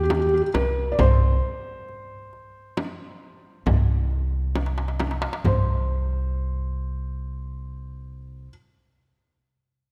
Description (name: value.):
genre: Arabic maqam ensemble.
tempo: 135 BPM (eighths).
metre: 10/8.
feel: straight.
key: unclear.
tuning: A4 = 439 Hz.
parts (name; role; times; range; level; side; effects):
felt-muted upright piano; melody; 0.0-8.5 s; G4 to D5; -28 LUFS; equal; none.
upright bass; bass; 0.0-8.5 s; C2 to E2-50c; -27 LUFS; equal; none.
darbuka; percussion; 0.1-5.9 s; none; -31 LUFS; equal; none.
frame drum; percussion; 0.1-5.9 s; none; -32 LUFS; equal; none.
room: moderate concert hall reverb, RT60 2.3 s.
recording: none.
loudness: -24 LUFS.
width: mono.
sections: 0.0-5.4 A section; 5.4-9.9 B section.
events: drum fill 4.6-5.4.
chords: none.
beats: 0.10 0.55 | 0.99 1.44 1.88 2.33 2.77 3.22 3.66 4.11 4.55 5.00 | 5.44 5.89 6.34 6.78 7.23 7.67 8.12.